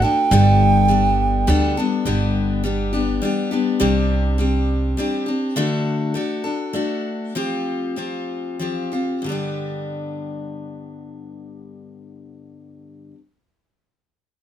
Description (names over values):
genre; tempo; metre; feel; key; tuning
acoustic folk duo or small band; 90-104 BPM; 3/4; straight; G major; A4 = 445 Hz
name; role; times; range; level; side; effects
baroque flute; melody; 0.0-1.8 s; G5; -18 LUFS; right 5 dB; none
picked steel-string acoustic guitar; accompaniment; 0.0-13.2 s; G2 to A4; -22 LUFS; left 3 dB; none
upright bass; bass; 0.3-4.9 s; G1 to D2; -19 LUFS; right 1 dB; none
room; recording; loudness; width
little or no reverb; close, detailed microphones; -18 LUFS; side -10 dB against mid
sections
0.0-2.1 A section; 2.1-9.3 B section; 9.3-13.3 C section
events
slowing down 5.6-9.3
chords
0.3 Gadd9; 2.1 G; 3.8 Csus2; 5.6 D; 7.3 Fsus2; 9.3 G